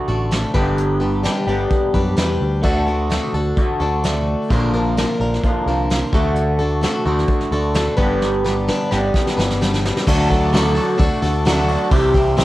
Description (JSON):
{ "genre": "folk rock and heartland rock", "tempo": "129 BPM", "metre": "4/4", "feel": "straight", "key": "D major", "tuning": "A4 = 440 Hz", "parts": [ { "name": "picked plugged-in swing-style acoustic guitar", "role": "accompaniment", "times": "0.0-12.4 s", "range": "G2 to B4", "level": "-21 LUFS", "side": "left 2 dB", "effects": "cassette tape, plate reverb" }, { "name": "electric guitar through a small old amp", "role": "riff", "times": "0.0-12.4 s", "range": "G2 to G4", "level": "-21 LUFS", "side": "right 1 dB", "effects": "phaser, cassette tape" }, { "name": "deep dub picked electric bass", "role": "bass", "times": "0.1-12.4 s", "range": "G1 to F#2", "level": "-22 LUFS", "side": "equal", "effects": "none" }, { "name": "soft brush drum kit", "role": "drums", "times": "0.3-12.4 s", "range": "crash cymbal, hi-hat, kick drum, snare drum", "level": "-20 LUFS", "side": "equal", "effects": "cassette tape" }, { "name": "bright tonewheel organ", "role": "sustained chords", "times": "10.1-12.4 s", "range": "D4 to C5", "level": "-33 LUFS", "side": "right 1 dB", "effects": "none" } ], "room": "moderate booth ambience, RT60 0.2 s", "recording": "home recording on cassette", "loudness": "-16 LUFS", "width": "side -16 dB against mid", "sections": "0.0-10.1 A section; 10.1-12.4 B section", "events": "drum fill 8.2-10.1", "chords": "0.0 D; 0.5 G; 2.6 D; 4.5 Bb; 6.1 D; 8.0 G; 10.1 D; 11.9 C" }